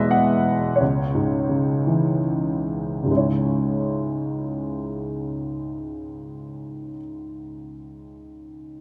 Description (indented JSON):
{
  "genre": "classical, lyrical solo piano",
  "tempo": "free time",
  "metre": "none",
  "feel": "none",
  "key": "C# minor",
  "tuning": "A4 = 440 Hz",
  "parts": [
    { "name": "clear upright piano", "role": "solo", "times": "0.0-8.8 s", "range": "C#2 to F#5", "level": "-24 LUFS", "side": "equal", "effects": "none" }
  ],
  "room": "moderate concert hall reverb, RT60 2.4 s",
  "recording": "none",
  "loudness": "-23 LUFS",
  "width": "mono",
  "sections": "0.0-3.1 A section; 3.1-8.1 B section",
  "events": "slowing down 0.0-3.1",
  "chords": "0.0 Eadd9; 0.8 C#m"
}